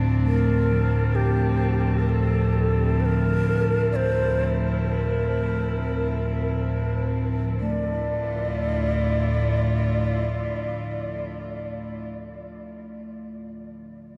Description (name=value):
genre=dark ambient drone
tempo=65 BPM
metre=4/4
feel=straight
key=D minor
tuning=A4 = 442 Hz
part: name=clear symphonic cello section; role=sustained chords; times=0.0-12.0 s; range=D2 to F4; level=-31 LUFS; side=equal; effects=shimmer reverb
part: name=quartz singing bowl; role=arpeggios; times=0.0-12.0 s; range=D3 to A3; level=-37 LUFS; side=equal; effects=none
part: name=deep rumbling drone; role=drone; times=0.0-12.0 s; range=D2 to A2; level=-27 LUFS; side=equal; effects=built-in reverb
part: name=wind-like tuned noise texture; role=texture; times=0.0-7.6 s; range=A5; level=-41 LUFS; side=equal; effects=built-in reverb, shimmer reverb
part: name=breathy long shakuhachi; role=melody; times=0.3-12.0 s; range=G4 to D5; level=-30 LUFS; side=equal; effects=shimmer reverb, delay
room=wet huge ambient reverb, RT60 8.5 s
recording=dark, warm production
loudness=-24 LUFS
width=mono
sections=0.0-7.6 A section; 7.6-11.3 B section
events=none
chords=0.0 Bbadd9/D; 7.6 Dm